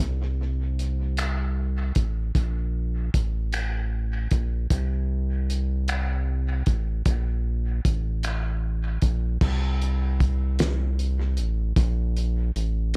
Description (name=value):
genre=slow six-eight R&B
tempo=51 BPM (dotted quarters)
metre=6/8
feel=straight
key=unclear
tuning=A4 = 440 Hz
part: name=rubbery square bass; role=bass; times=0.0-13.0 s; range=A1 to C2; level=-27 LUFS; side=equal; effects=none
part: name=cloth-damped thuddy drum kit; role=drums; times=0.0-13.0 s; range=crash cymbal, finger snaps, hi-hat, kick drum, snare drum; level=-28 LUFS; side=equal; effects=dub echo
room=little or no reverb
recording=echo-heavy mix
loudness=-26 LUFS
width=mono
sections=0.0-9.4 A section; 9.4-13.0 B section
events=none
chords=none